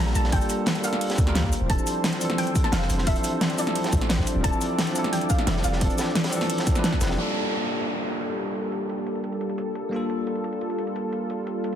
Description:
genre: liquid drum and bass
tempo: 175 BPM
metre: 4/4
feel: straight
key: G dorian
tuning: A4 = 441 Hz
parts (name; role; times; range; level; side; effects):
- soft round pluck; melody; 0.0-6.8 s; D5 to Bb5; -32 LUFS; equal; ensemble chorus, ping-pong delay
- bell-like tine electric piano; accompaniment; 0.0-11.8 s; E3 to B4; -28 LUFS; equal; digital delay
- warm analog pad; sustained chords; 0.0-11.8 s; G3 to D5; -31 LUFS; equal; chorus, sidechain pumping
- long sustained 808-style bass; bass; 0.0-7.2 s; D1 to D2; -25 LUFS; equal; none
- crunchy breakbeat drum kit; drums; 0.1-7.2 s; hi-hat, snare drum; -33 LUFS; equal; high-pass filter on hats, high-pass filter on snare, high-pass filter on room
- pop drum kit; drums; 0.2-11.8 s; crash cymbal, hi-hat, shaker, snare drum; -28 LUFS; equal; overdrive, low-pass filter on snare, low-pass filter on hats, low-pass filter on perc, low-pass filter on cymbals, low-pass filter on room
- electronic kick drum; drums; 0.3-7.0 s; none; -25 LUFS; equal; overdrive
- downlifter; sound effects; 7.2-9.9 s; none; -31 LUFS; equal; none
room: light reverb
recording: dense, heavily limited modern master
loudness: -22 LUFS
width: side -9 dB against mid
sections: 0.0-7.2 A section; 7.2-11.8 B section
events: drop 0.0-7.2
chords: 0.0 Gm9; 1.5 Dm9; 7.2 Gm9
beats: | 0.33 0.67 1.01 1.36 | 1.70 2.04 2.38 2.73 | 3.07 3.41 3.76 4.10 | 4.44 4.79 5.13 5.47 | 5.81 6.16 6.50 6.84 | 7.18 7.53 7.87 8.21 | 8.56 8.90 9.24 9.59 | 9.93 10.27 10.61 10.96 | 11.30 11.64

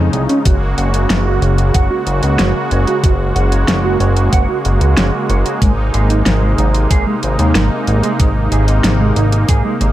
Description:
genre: synthwave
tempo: 93 BPM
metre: 4/4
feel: straight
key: unclear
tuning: A4 = 441 Hz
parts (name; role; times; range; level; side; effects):
- brassy analog pad; sustained chords; 0.0-9.9 s; C3 to Gb4; -18 LUFS; equal; chorus, sidechain pumping
- chorused synth bass; bass; 0.0-9.9 s; Gb1 to F2; -14 LUFS; equal; tube saturation, sidechain pumping
- mellow electric guitar; riff; 0.1-9.9 s; Ab3 to Gb5; -21 LUFS; right 4 dB; lush chorus, low-pass filter, digital delay
- pop drum kit; drums; 0.1-9.9 s; hi-hat, snare drum; -19 LUFS; equal; overdrive
- electronic kick drum; drums; 0.5-9.6 s; none; -13 LUFS; equal; none
room: little or no reverb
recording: none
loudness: -11 LUFS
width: side -14 dB against mid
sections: 0.0-9.9 A section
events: filter sweep on clean electric guitar 0.0-9.9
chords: 0.5 Gbadd9; 5.6 Abadd9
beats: | 0.46 1.10 1.75 2.39 | 3.04 3.68 4.33 4.97 | 5.62 6.26 6.91 7.55 | 8.20 8.84 9.49

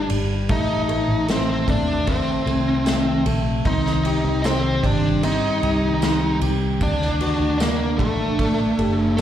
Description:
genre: pop ballad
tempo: 76 BPM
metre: 4/4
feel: straight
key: unclear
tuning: A4 = 444 Hz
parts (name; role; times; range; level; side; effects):
- fuzz lead guitar; melody; 0.0-9.2 s; A3 to Eb5; -22 LUFS; equal; distortion, slapback echo, ping-pong delay
- clear concert grand piano; accompaniment; 0.0-9.2 s; G3 to A4; -27 LUFS; left 4 dB; slapback echo
- ethereal airy pad; sustained chords; 0.0-9.2 s; C3 to G4; -28 LUFS; right 2 dB; ensemble chorus, built-in reverb
- vintage muted fingered electric bass; bass; 0.0-9.2 s; F#1 to Eb2; -24 LUFS; equal; none
- unplugged drum kit; drums; 0.1-9.2 s; kick drum, ride cymbal, snare drum; -27 LUFS; right 1 dB; none
- tambourine; percussion; 1.3-9.2 s; none; -38 LUFS; right 6 dB; none
- dark French horn section; second line; 8.8-9.2 s; F#4 to G4; -31 LUFS; equal; slapback echo, ping-pong delay
room: light reverb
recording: live gig heard through the venue's PA, recital hall reverb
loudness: -18 LUFS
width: side -10 dB against mid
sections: 0.0-9.2 A section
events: none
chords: 0.5 Adim; 3.7 Cm; 6.8 D7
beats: | 0.49 1.28 2.07 2.86 | 3.65 4.44 5.23 6.02 | 6.81 7.60 8.39 9.18

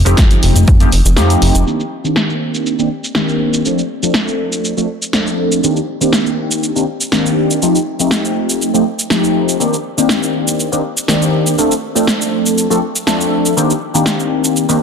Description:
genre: filtered disco house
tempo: 121 BPM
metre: 4/4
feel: straight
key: C dorian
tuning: A4 = 445 Hz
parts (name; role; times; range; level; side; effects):
- plucky analog bass; bass; 0.0-1.6 s; F1 to F2; -11 LUFS; equal; sidechain pumping, low-pass filter
- funky polysynth comp; accompaniment; 0.1-14.8 s; Eb3 to A4; -14 LUFS; equal; chorus, phaser, sidechain pumping, low-pass filter
- punchy analog drum machine; drums; 0.1-14.8 s; hi-hat, shaker, snare drum; -18 LUFS; equal; sidechain pumping on hats, low-pass filter on hats, sidechain pumping on perc, low-pass filter on perc, low-pass filter on snare
- tambourine; percussion; 0.1-1.6 s; none; barely audible; none; none
- electronic kick drum; drums; 0.2-0.8 s; none; -10 LUFS; equal; none
room: moderate plate reverb, RT60 2.1 s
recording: dense, heavily limited modern master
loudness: -12 LUFS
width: side -6 dB against mid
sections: 0.0-1.7 A section; 1.7-14.8 B section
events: filter sweep 0.0-1.7; kick drops out 1.2-1.7; filter sweep on analog polysynth 1.7-14.8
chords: 0.0 F7; 1.7 Cm9; 3.7 Dm7; 5.6 Cm9; 7.6 F7; 9.6 Cm9; 11.6 Dm7; 13.6 Cm9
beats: 0.18 0.68 1.17 | 1.67 2.16 2.66 3.16 | 3.65 4.15 4.64 5.14 | 5.63 6.13 6.63 7.12 | 7.62 8.12 8.61 9.11 | 9.60 10.10 10.59 11.09 | 11.59 12.08 12.58 13.07 | 13.57 14.06 14.56

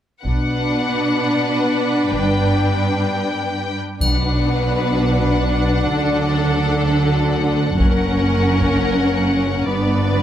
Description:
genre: cinematic, epic orchestral film score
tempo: free time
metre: none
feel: none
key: B minor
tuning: A4 = 440 Hz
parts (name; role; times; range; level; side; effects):
- warm symphonic violin section; melody; 0.2-10.2 s; D5 to G5; -25 LUFS; left 3 dB; none
- mellow French horn section; sustained chords; 0.2-10.2 s; F#3 to D4; -24 LUFS; left 4 dB; none
- rich symphonic cello section; bass; 0.2-10.2 s; F#2 to D3; -22 LUFS; right 2 dB; none
- rich symphonic double bass section; bass; 0.2-10.2 s; F#1 to D2; -22 LUFS; right 2 dB; none
- rich studio violin section; second line; 0.3-10.2 s; A4 to B4; -25 LUFS; left 2 dB; none
- warm symphonic viola section; accompaniment; 0.3-10.2 s; B3 to D4; -23 LUFS; right 1 dB; none
- taiko ensemble; drums; 0.3-8.9 s; none; -21 LUFS; equal; none
- triangle; percussion; 4.0-5.1 s; none; -25 LUFS; left 3 dB; none
room: light reverb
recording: close, detailed microphones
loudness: -16 LUFS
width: side -10 dB against mid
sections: 0.2-4.0 A section; 4.0-10.2 B section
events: build-up 4.0-10.2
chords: 0.2 Bm; 2.1 G; 4.0 Bm; 5.9 D; 7.8 F#; 9.7 G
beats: free time

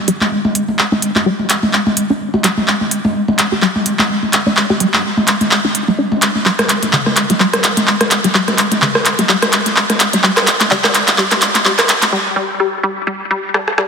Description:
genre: minimal techno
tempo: 127 BPM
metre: 4/4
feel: swing 56% on 16ths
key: unclear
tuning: A4 = 439 Hz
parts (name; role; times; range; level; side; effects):
- resonant blip pluck; riff; 0.1-13.8 s; G3 to G4; -19 LUFS; left 1 dB; chorus, phaser, ping-pong delay
- punchy sub bass; bass; 0.1-12.1 s; D1 to G2; -37 LUFS; equal; none
- minimal click drum kit; drums; 0.1-13.9 s; handclaps, hi-hat, rim click; -14 LUFS; equal; none
- booming analog drum machine; percussion; 0.2-12.1 s; rim click, toms; -16 LUFS; equal; ping-pong delay
room: wet lush hall reverb, RT60 2.0 s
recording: heavily compressed radio sound, high-pass filter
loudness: -12 LUFS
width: side -6 dB against mid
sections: 0.0-13.9 A section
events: build-up 0.0-13.9; drum fill 0.0-12.1, 13.5-13.9; filter sweep on synth arpeggio sound 0.0-13.9; break 12.1-13.9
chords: none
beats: 0.32 | 0.79 1.26 1.73 2.21 | 2.68 3.15 3.62 4.09 | 4.57 5.04 5.51 5.99 | 6.46 6.93 7.40 7.87 | 8.35 8.82 9.29 9.76 | 10.24 10.71 11.18 11.65 | 12.13 12.60 13.07 13.54

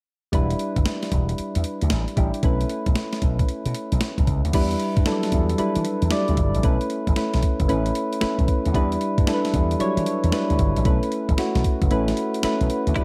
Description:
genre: R&B, new jack swing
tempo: 114 BPM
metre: 4/4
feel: swing 65% on 16ths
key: E dorian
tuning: A4 = 440 Hz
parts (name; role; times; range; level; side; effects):
- soft electric-piano-like synth keys; accompaniment; 0.3-13.0 s; F#3 to D5; -26 LUFS; equal; chorus
- slap bass with an envelope filter; bass; 0.3-13.0 s; E1 to E3; -25 LUFS; equal; none
- boom bap sampler-style drum kit; drums; 0.3-13.0 s; crash cymbal, hi-hat, kick drum, snare drum; -26 LUFS; equal; none
- direct-recorded clean electric guitar; riff; 13.0 s; E4; -30 LUFS; equal; subtle chorus
room: light reverb, digital ambience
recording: none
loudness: -22 LUFS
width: mono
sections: 0.3-4.5 A section; 4.5-13.0 B section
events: kick muted 11.9-13.0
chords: 0.3 Em7; 2.4 B9sus4; 4.5 Em7; 6.6 B9sus4; 8.7 Em7; 10.9 B9sus4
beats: | 0.33 0.85 1.38 1.91 | 2.43 2.96 3.48 4.01 | 4.54 5.06 5.59 6.12 | 6.64 7.17 7.69 8.22 | 8.75 9.27 9.80 10.33 | 10.85 11.38 11.90 12.43 | 12.96

